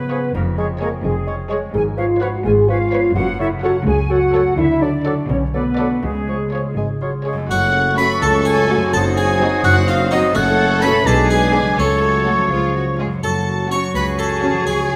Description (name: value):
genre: cinematic, playful, whimsical film cue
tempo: 84 BPM (dotted quarters)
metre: 6/8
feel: straight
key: F# minor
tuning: A4 = 440 Hz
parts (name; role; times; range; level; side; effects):
- flute section; second line; 0.0-15.0 s; G#4 to D#6; -31 LUFS; equal; none
- dark French horn section; sustained chords; 0.0-15.0 s; F#3 to G#4; -23 LUFS; equal; none
- concert harp; arpeggios; 0.0-15.0 s; E#2 to C#5; -27 LUFS; equal; none
- rich studio double bass section; bass; 0.0-15.0 s; E#1 to F#2; -26 LUFS; equal; none
- rich symphonic cello section; bass; 0.0-15.0 s; C#2 to A4; -26 LUFS; equal; none
- warm studio violin section; melody; 0.1-15.0 s; C#5 to C#6; -31 LUFS; equal; none
- warm clarinet; second line; 0.1-15.0 s; F#4 to C#5; -29 LUFS; equal; none
- warm oboe; second line; 0.1-15.0 s; C#5 to C#6; -23 LUFS; equal; none
- warm symphonic violin section; second line; 0.1-14.6 s; C#4 to D5; -31 LUFS; equal; none
- mellow bassoon; accompaniment; 0.1-15.0 s; E#3 to A3; -30 LUFS; equal; none
- warm studio viola section; accompaniment; 0.1-14.6 s; D3 to B4; -31 LUFS; equal; none
- harpsichord; melody; 7.5-15.0 s; C#4 to C#5; -29 LUFS; equal; none
- mellow tuba; bass; 7.5-15.0 s; F#1 to C#2; -26 LUFS; equal; none
room: moderate scoring stage reverb, RT60 1.8 s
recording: none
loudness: -17 LUFS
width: mono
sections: 0.0-7.5 A section; 7.5-15.0 B section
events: none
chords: 0.3 C#/E#; 1.7 C#7/G#; 3.2 F#m; 4.6 D; 5.3 Bm7; 6.0 C#; 7.5 F#m; 11.1 G#dim/B; 11.8 F#m/C#; 12.5 C#; 13.2 F#m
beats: | 0.34 1.04 | 1.74 2.45 | 3.16 3.86 | 4.58 5.30 | 6.03 6.77 | 7.50 8.22 | 8.94 9.64 | 10.35 11.06 | 11.78 12.51 | 13.23 13.95 | 14.66